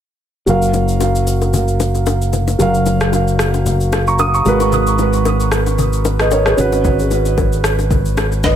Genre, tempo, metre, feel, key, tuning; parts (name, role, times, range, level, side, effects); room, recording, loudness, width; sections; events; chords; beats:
amapiano; 113 BPM; 4/4; swing 55% on 16ths; F# major; A4 = 440 Hz
dark concert grand piano; accompaniment; 0.5-8.6 s; F#3 to D#6; -16 LUFS; right 2 dB; tape echo
modern bright fingered electric bass; bass; 0.5-8.6 s; F#1 to G#1; -17 LUFS; equal
afro-pop drum kit; drums; 0.5-8.6 s; kick drum, rim click, shaker, snare drum; -21 LUFS; equal
congas and bongos; percussion; 0.5-8.6 s; -23 LUFS; left 4 dB; tape echo
light reverb; echo-heavy mix; -13 LUFS; side -10 dB against mid
0.5-8.6 A section
0.5 F#maj7; 4.5 G#m9; 6.6 C#7sus4/G#
| 0.47 1.00 1.54 2.07 | 2.60 3.13 3.66 4.19 | 4.72 5.25 5.78 6.31 | 6.84 7.38 7.91 8.44